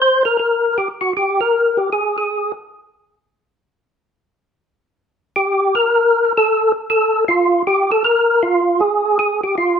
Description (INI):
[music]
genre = jazz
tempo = 157 BPM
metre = 4/4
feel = swing 64% on 8ths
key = unclear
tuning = A4 = 440 Hz
[part]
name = percussive tonewheel organ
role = solo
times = 0.0-2.5, 5.4-9.8 s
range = F4 to C5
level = -14 LUFS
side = equal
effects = slow rotary speaker, overdrive, chorus vibrato
[sound]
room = moderate stone room reverb, RT60 1.0 s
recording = band playing live in one room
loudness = -14 LUFS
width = side -7 dB against mid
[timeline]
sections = 0.0-9.8 A section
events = none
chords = none